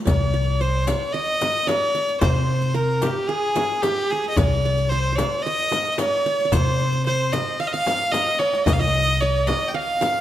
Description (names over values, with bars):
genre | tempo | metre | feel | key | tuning
Arabic maqam ensemble | 112 BPM | 4/4 | straight | C maqam bayati | A4 = 440 Hz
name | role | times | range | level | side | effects
clear violin | melody | 0.1-10.2 s | G4 to G5 | -22 LUFS | equal | none
qanun | second line | 0.1-10.2 s | G4 to F5 | -28 LUFS | right 5 dB | none
upright bass | bass | 0.1-9.5 s | C2 to C3 | -23 LUFS | equal | none
darbuka | percussion | 0.1-10.1 s | none | -28 LUFS | left 1 dB | none
frame drum | percussion | 0.1-10.1 s | none | -28 LUFS | left 3 dB | none
riq | percussion | 0.1-10.1 s | none | -35 LUFS | left 3 dB | none
room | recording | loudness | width
moderate scoring stage reverb, RT60 1.6 s | none | -19 LUFS | side -12 dB against mid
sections
0.1-10.2 A section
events
drum fill 8.1-8.7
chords
none